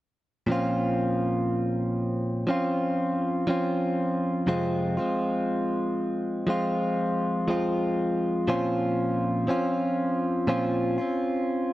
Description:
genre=pop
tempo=60 BPM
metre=4/4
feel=straight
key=Bb minor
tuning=A4 = 440 Hz
part: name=direct-recorded clean electric guitar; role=solo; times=0.5-11.7 s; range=F2 to F4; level=-24 LUFS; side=equal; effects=none
room=little or no reverb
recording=dry, close 1970s-style studio recording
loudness=-24 LUFS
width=side -16 dB against mid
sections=0.5-8.5 A section; 8.5-11.7 B section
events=none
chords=0.5 Bbmadd9; 4.5 Fm; 8.5 Bbmadd9

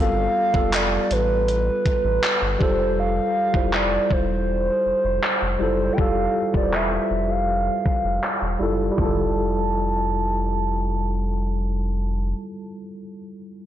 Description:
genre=contemporary R&B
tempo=80 BPM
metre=4/4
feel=straight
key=F major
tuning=A4 = 440 Hz
part: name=hollow clarinet-like synth lead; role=melody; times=0.0-12.3 s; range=B4 to A5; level=-24 LUFS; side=right 1 dB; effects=chorus
part: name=tine electric piano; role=accompaniment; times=0.0-13.7 s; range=G3 to C5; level=-26 LUFS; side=equal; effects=overdrive, fast stereo tremolo
part: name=round analog bass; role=bass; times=0.0-12.3 s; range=E1 to A1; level=-26 LUFS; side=equal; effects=none
part: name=clean 12-bit digital drum machine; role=drums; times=0.5-9.2 s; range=handclaps, hi-hat, kick drum, toms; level=-24 LUFS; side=equal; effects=overdrive
room=light reverb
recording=blown-out, overdriven recording, overdrive, low-pass filter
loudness=-19 LUFS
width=side -11 dB against mid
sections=0.0-9.0 A section; 9.0-12.0 B section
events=filter sweep 0.0-9.0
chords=0.0 G9; 2.6 Fmaj9

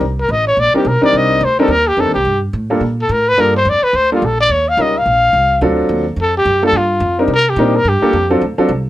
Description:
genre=jazz, small-group swing and bop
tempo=214 BPM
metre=4/4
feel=swing 60% on 8ths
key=G minor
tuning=A4 = 442 Hz
part: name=upright bass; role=bass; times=0.0-8.9 s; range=A1 to C3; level=-19 LUFS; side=right 1 dB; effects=none
part: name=breathy trumpet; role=melody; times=0.2-8.3 s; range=F4 to F5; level=-13 LUFS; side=left 1 dB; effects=none
part: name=warm concert grand piano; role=accompaniment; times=0.7-8.7 s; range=F#3 to Bb4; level=-15 LUFS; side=equal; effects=none
room=light reverb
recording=none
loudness=-11 LUFS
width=side -14 dB against mid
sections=0.0-8.9 A section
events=trumpet solo 0.0-8.9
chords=0.0 Cm7; 2.3 Gm7; 4.5 Eb7; 5.6 D7#9; 6.7 Gm7; 7.3 Cm7; 7.9 Gm7

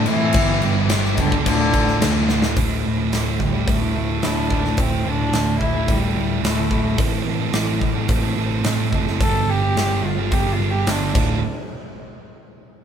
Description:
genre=quiet-loud alternative rock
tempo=108 BPM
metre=4/4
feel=straight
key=D minor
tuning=A4 = 440 Hz
part: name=warm cello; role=melody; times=0.0-11.4 s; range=D3 to A4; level=-24 LUFS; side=left 1 dB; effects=none
part: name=dark studio string section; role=sustained chords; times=0.0-2.6 s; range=A4 to D6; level=-36 LUFS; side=left 1 dB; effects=none
part: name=biting overdriven guitar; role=riff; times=0.0-2.6 s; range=D2 to A4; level=-24 LUFS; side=left 8 dB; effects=none
part: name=thick fuzz guitar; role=riff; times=0.0-11.4 s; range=D2 to A4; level=-22 LUFS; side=right 5 dB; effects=distortion
part: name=picked electric bass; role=bass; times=0.0-11.4 s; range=D1 to A2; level=-24 LUFS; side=left 1 dB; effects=none
part: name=huge arena drum kit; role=drums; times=0.1-11.3 s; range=crash cymbal, hi-hat, kick drum, snare drum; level=-23 LUFS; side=left 1 dB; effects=none
part: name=electric guitar through a small old amp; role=arpeggios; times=2.6-7.0 s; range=D2 to E4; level=-32 LUFS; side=right 1 dB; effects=none
room=moderate studio reverb, RT60 0.7 s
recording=band playing live in one room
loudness=-17 LUFS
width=side -8 dB against mid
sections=0.0-2.6 A section; 2.6-11.4 B section; 11.4-12.8 C section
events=drum fill 2.3, 11.2; cello solo 2.6-11.4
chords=0.4 G; 1.5 Dm; 2.6 Dsus2; 7.0 Am; 9.2 G; 11.2 Dm; 11.4 N.C.

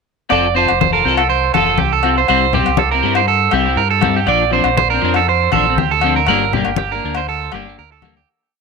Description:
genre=highlife guitar band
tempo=120 BPM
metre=4/4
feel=swing 53% on 16ths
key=F major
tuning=A4 = 440 Hz
part: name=electric guitar at the edge of break-up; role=accompaniment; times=0.3-8.2 s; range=F3 to A4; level=-20 LUFS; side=left 14 dB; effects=analog chorus
part: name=electric guitar at the edge of break-up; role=arpeggios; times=0.3-8.3 s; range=G4 to D5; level=-15 LUFS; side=right 13 dB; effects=tape echo
part: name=deep dub fingered electric bass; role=bass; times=0.3-8.2 s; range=F1 to G2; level=-21 LUFS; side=equal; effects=none
part: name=agogo bells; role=percussion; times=0.3-8.2 s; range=none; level=-23 LUFS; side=left 13 dB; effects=none
part: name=congas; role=percussion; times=0.3-8.2 s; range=none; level=-20 LUFS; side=left 9 dB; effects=none
room=moderate spring reverb, RT60 2.8 s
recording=1960s-style stereo with parts hard left and right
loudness=-12 LUFS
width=side -4 dB against mid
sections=0.3-8.3 groove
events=fade-out 6.3-8.3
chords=0.3 F; 2.3 C; 4.3 Bbadd9; 6.3 Gm

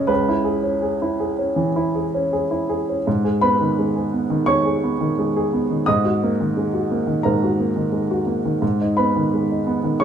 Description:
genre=neoclassical minimalist piano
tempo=80-88 BPM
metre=4/4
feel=rubato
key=G# minor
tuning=A4 = 440 Hz
part: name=warm upright piano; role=solo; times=0.0-10.0 s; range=C#2 to D#6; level=-18 LUFS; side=right 1 dB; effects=none
room=moderate large studio reverb, RT60 0.9 s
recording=band playing live in one room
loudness=-18 LUFS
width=side -8 dB against mid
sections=0.0-3.1 A section; 3.1-10.0 B section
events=none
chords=0.1 C#m7; 3.1 G#m; 5.9 D#m/G#; 8.6 G#m

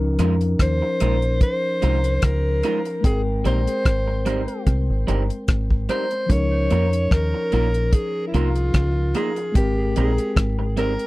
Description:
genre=lovers rock reggae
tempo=74 BPM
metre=4/4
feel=swing 54% on 16ths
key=unclear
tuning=A4 = 442 Hz
part: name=mellow tine electric piano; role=accompaniment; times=0.0-11.1 s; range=F3 to G5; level=-27 LUFS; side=left 2 dB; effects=medium stereo tremolo
part: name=deep dub fingered electric bass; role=bass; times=0.0-11.0 s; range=G1 to F2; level=-21 LUFS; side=equal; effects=none
part: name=electric guitar through a small old amp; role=stabs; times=0.2-10.9 s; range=G3 to Bb4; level=-26 LUFS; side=right 4 dB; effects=none
part: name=damped 70s drum kit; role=drums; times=0.2-11.1 s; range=hi-hat, kick drum, rim click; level=-20 LUFS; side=equal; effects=none
part: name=breathy alto saxophone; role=melody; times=0.6-11.1 s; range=Fb4 to Db5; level=-25 LUFS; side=equal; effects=tape echo
room=little or no reverb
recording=dry, close 1970s-style studio recording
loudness=-18 LUFS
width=side -19 dB against mid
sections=0.0-11.1 A section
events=none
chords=0.0 Db69; 3.0 Abmaj9; 6.3 Db69; 9.6 Abmaj9

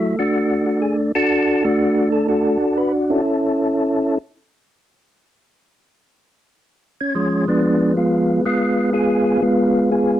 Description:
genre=jazz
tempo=124 BPM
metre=4/4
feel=swing 68% on 8ths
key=unclear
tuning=A4 = 440 Hz
part: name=percussive tonewheel organ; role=solo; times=0.0-10.2 s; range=F3 to B4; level=-16 LUFS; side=equal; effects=chorus vibrato, fast rotary speaker
room=light reverb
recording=dry, close 1970s-style studio recording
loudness=-16 LUFS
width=side -12 dB against mid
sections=0.0-10.2 A section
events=none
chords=0.0 Bm11/F# (rootless); 3.2 C#m; 7.1 Fdim7

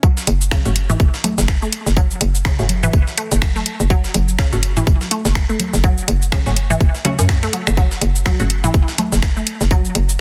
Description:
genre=minimal techno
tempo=124 BPM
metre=4/4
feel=swing 58% on 16ths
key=F# minor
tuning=A4 = 440 Hz
part: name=resonant blip pluck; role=riff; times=0.0-9.8 s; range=C#3 to A3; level=-27 LUFS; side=equal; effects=phaser, analog chorus, sidechain pumping, delay
part: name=breakbeat sampler-style drum kit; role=drums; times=0.0-10.1 s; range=hi-hat, snare drum, tambourine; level=-32 LUFS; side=equal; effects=sidechain pumping on perc, high-pass filter on perc, high-pass filter on snare, sidechain pumping on hats, high-pass filter on hats
part: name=electronic kick drum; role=drums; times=0.0-9.8 s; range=none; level=-18 LUFS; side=equal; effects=none
part: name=garage drum kit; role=drums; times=0.2-10.2 s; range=cabasa, finger snaps, hi-hat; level=-25 LUFS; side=equal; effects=soft clipping on snare
part: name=hollow knocking FM bass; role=bass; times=0.3-10.2 s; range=F#1 to F#2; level=-21 LUFS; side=equal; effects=sidechain pumping
part: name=electronic congas and toms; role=percussion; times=0.5-9.8 s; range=none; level=-27 LUFS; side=equal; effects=delay
part: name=filtered dub chord stab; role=stabs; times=0.7-8.5 s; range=A3 to F#4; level=-30 LUFS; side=equal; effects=phaser, lush chorus, delay
room=little or no reverb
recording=dense, heavily limited modern master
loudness=-17 LUFS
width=mono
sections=0.0-10.2 A section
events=drop 0.0-10.2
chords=none

